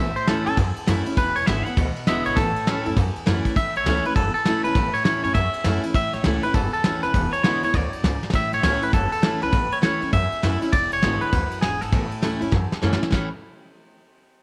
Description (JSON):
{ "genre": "rockabilly", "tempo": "201 BPM", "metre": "4/4", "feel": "swing 63% on 8ths", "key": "A major", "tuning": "A4 = 439 Hz", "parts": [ { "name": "twangy electric guitar", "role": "melody", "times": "0.0-12.8 s", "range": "G#4 to F#5", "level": "-27 LUFS", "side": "equal", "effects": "spring reverb, tape echo" }, { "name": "picked steel-string acoustic guitar", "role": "accompaniment", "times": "0.0-13.3 s", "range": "E2 to E4", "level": "-29 LUFS", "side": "equal", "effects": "none" }, { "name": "upright bass", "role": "bass", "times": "0.0-13.3 s", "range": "E1 to F#2", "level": "-29 LUFS", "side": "equal", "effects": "none" }, { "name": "soft brush drum kit", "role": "drums", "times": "0.2-13.2 s", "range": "crash cymbal, kick drum, ride cymbal, snare drum", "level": "-27 LUFS", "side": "equal", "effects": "none" } ], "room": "light reverb, small room ambience", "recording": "none", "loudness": "-22 LUFS", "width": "mono", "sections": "0.0-3.6 A section; 3.6-13.1 B section; 13.1-14.3 C section", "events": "clean electric guitar solo 0.0-3.6; drum fill 8.2, 12.5-13.1", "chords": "0.0 A; 1.2 E7; 2.4 A; 7.1 E7; 8.3 A; 10.7 E7; 11.9 A" }